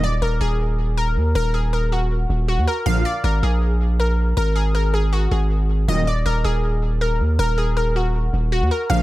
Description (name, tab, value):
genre	hip hop, trap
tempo	159 BPM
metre	4/4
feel	half-time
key	Eb harmonic minor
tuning	A4 = 439 Hz
part	glassy wavetable pluck	melody	0.0-9.0 s	Gb4 to F5	-23 LUFS	left 1 dB	chorus, analog delay
part	long sustained 808-style bass	bass	0.0-9.0 s	Eb1 to Eb2	-19 LUFS	equal	none
part	big bright polysynth	stabs	2.9-3.0, 5.9-6.0, 8.9-9.0 s	Gb2 to F3	-23 LUFS	right 2 dB	chorus
room	little or no reverb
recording	echo-heavy mix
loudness	-18 LUFS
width	side -17 dB against mid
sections	0.0-9.0 A section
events	none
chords	0.0 Ebm; 2.9 Bb7(no3); 4.4 Absus2; 5.9 Ebm